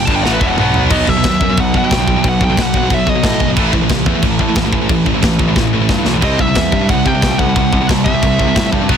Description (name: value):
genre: heavy metal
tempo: 181 BPM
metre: 4/4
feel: straight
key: unclear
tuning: A4 = 441 Hz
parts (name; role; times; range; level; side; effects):
- high-gain lead guitar; melody; 0.0-3.5, 6.2-8.7 s; B4 to A5; -18 LUFS; equal; distortion, tape echo
- high-gain distorted guitar; riff; 0.0-9.0 s; E2 to C4; -18 LUFS; left 13 dB; distortion
- high-gain distorted guitar; riff; 0.0-9.0 s; E2 to C4; -18 LUFS; right 14 dB; distortion
- fuzz picked electric bass; bass; 0.0-9.0 s; E1 to C3; -19 LUFS; equal; overdrive
- tight metal drum kit; drums; 0.1-9.0 s; crash cymbal, kick drum, snare drum, toms; -17 LUFS; equal; none
room: light reverb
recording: dense, heavily limited modern master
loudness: -11 LUFS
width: side -8 dB against mid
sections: 0.9-9.0 A section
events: drum fill 0.2-0.9, 5.6-6.2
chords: 0.0 Em; 0.6 B5; 0.9 B; 3.6 A5; 6.2 C